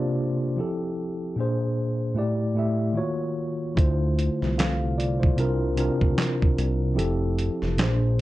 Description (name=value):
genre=lo-fi hip hop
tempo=75 BPM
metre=4/4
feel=swing 60% on 16ths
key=D minor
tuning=A4 = 440 Hz
part: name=mellow tine electric piano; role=accompaniment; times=0.0-8.2 s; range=A2 to F5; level=-24 LUFS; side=equal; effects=medium stereo tremolo, plate reverb
part: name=fat analog bass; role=bass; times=3.8-8.2 s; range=F1 to D2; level=-26 LUFS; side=right 1 dB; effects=none
part: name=dusty soul sampler-style drum kit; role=drums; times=3.8-8.0 s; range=handclaps, hi-hat, kick drum, snare drum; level=-24 LUFS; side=right 1 dB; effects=vintage 12-bit sampler grit
room=moderate studio reverb, RT60 0.6 s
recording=dark, warm production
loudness=-22 LUFS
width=side -16 dB against mid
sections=0.0-3.8 A section; 3.8-8.2 B section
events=none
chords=0.0 C7sus4; 0.6 Fmaj7; 1.4 Bb9; 2.2 A7sus4; 3.0 Ebm7; 3.8 Dm7; 5.4 C7sus4; 7.0 Fmaj7